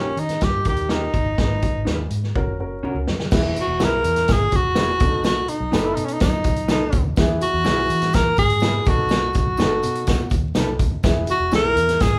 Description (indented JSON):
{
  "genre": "uptempo 1960s-style soul",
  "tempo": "124 BPM",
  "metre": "4/4",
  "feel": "straight",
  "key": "unclear",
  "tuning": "A4 = 440 Hz",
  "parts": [
    { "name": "breathy tenor saxophone", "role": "melody", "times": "0.0-12.2 s", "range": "C#4 to A#4", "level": "-24 LUFS", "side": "equal", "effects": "none" },
    { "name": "dark grand piano", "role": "accompaniment", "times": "0.0-12.1 s", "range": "G#2 to B4", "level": "-30 LUFS", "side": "equal", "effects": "none" },
    { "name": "electric guitar through a small old amp", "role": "stabs", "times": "0.0-11.7 s", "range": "C#4 to B4", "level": "-29 LUFS", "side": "equal", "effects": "none" },
    { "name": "vintage muted fingered electric bass", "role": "bass", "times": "0.0-12.2 s", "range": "E1 to E3", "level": "-28 LUFS", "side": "equal", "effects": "none" },
    { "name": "vintage drum kit", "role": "drums", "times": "0.2-12.1 s", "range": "crash cymbal, hi-hat, kick drum, snare drum", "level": "-24 LUFS", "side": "equal", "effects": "none" },
    { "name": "congas", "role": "percussion", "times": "0.3-12.1 s", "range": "none", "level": "-39 LUFS", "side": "equal", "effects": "none" },
    { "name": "tambourine", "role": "percussion", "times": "3.3-12.1 s", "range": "none", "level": "-47 LUFS", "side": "equal", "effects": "none" }
  ],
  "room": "moderate large studio reverb, RT60 0.8 s",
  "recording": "band playing live in one room, vinyl crackle",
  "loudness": "-20 LUFS",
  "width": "mono",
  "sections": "0.0-3.3 A section; 3.3-12.2 B section",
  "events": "drum fill 2.4-3.3",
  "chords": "0.0 D#; 1.4 G#m; 2.4 F#; 3.3 E; 5.0 B7; 7.2 E; 8.9 B7; 11.0 E"
}